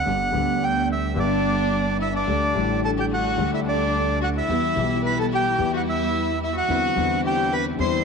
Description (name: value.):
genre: tango.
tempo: 109 BPM.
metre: 4/4.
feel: rubato.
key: G major.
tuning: A4 = 435 Hz.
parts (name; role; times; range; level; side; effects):
bandoneon; melody; 0.0-8.0 s; D5 to C6; -24 LUFS; right 4 dB; none.
warm concert grand piano; accompaniment; 0.1-8.0 s; G1 to G4; -26 LUFS; left 10 dB; none.
warm studio string section; stabs; 0.1-8.0 s; G3 to E4; -28 LUFS; right 12 dB; none.
upright bass; bass; 0.1-8.0 s; G1 to E2; -30 LUFS; right 1 dB; none.
rich violin; second line; 1.2-8.0 s; D4 to C5; -27 LUFS; left 11 dB; slapback echo.
room: moderate spring reverb, RT60 2.7 s.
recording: 1960s-style stereo with parts hard left and right.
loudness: -20 LUFS.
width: side -5 dB against mid.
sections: 0.0-8.0 A section.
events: none.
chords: 0.1 G; 2.3 Dsus4; 4.5 Em; 6.7 Cadd9/E.